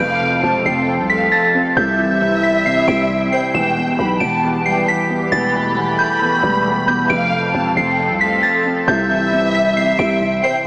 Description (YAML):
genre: hip hop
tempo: 135 BPM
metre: 4/4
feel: half-time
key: unclear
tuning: A4 = 440 Hz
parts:
  - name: soft synth bell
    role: melody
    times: 0.0-10.6 s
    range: G6 to E7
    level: -18 LUFS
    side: equal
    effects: chorus, phaser, tape echo
  - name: warm studio violin section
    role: second line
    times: 0.0-10.6 s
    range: E5 to B5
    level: -20 LUFS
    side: equal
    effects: tape echo
  - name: dark grand piano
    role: accompaniment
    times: 0.0-10.7 s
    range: E2 to C5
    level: -21 LUFS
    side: equal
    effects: ensemble chorus, low-pass filter
  - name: sweeping resonant pad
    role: sustained chords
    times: 0.0-10.6 s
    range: C3 to A4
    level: -23 LUFS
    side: equal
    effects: chorus
  - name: growling 808-style bass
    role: bass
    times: 0.0-10.4 s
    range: E1 to C2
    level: -22 LUFS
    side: equal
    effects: none
room: wet lush hall reverb, RT60 2.7 s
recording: dreamy mix soaked in reverb, small speaker sound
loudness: -13 LUFS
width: side -27 dB against mid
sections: 0.0-10.7 A section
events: none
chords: 0.0 F; 1.8 C; 3.5 Em; 7.1 F; 8.9 C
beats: 0.43 0.88 1.32 | 1.77 2.21 2.65 3.10 | 3.54 3.99 4.43 4.88 | 5.32 5.77 6.21 6.66 | 7.10 7.54 7.99 8.43 | 8.88 9.32 9.77 10.21 | 10.65